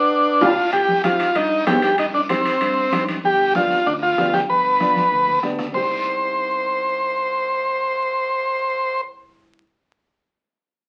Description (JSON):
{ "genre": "latin, cumbia", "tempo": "191 BPM", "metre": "4/4", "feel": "straight", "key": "C harmonic minor", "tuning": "A4 = 443 Hz", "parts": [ { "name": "combo organ", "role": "melody", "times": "0.0-9.0 s", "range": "C4 to C5", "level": "-20 LUFS", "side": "equal", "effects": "none" }, { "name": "raspy tenor saxophone", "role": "second line", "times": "0.0-0.7 s", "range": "B3 to D4", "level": "-28 LUFS", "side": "equal", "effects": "none" }, { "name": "nylon-string guitar", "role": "accompaniment", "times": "0.4-9.6 s", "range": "B3 to G4", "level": "-29 LUFS", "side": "equal", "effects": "none" }, { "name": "fingered electric bass", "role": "bass", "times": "0.4-9.6 s", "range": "G1 to G2", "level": "-36 LUFS", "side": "equal", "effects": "none" }, { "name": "bombo", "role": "percussion", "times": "0.4-5.8 s", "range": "none", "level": "-39 LUFS", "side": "equal", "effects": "none" }, { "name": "congas", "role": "percussion", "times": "0.4-5.8 s", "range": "none", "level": "-33 LUFS", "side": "equal", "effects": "none" }, { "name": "guiro", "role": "percussion", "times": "0.4-5.8 s", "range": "none", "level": "-38 LUFS", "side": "equal", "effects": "none" }, { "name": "timbales", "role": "percussion", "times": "0.4-3.2 s", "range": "none", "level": "-27 LUFS", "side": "equal", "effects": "none" } ], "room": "wet studio reverb, RT60 0.6 s", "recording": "very old 78 rpm record, vinyl crackle", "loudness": "-20 LUFS", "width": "mono", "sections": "0.7-5.7 A section; 5.7-8.3 B section", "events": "drum fill 0.0-0.7, 5.0-5.7; band accent 0.0-0.7", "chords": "0.0 G7; 0.7 Cm; 3.2 G7; 5.7 Cm" }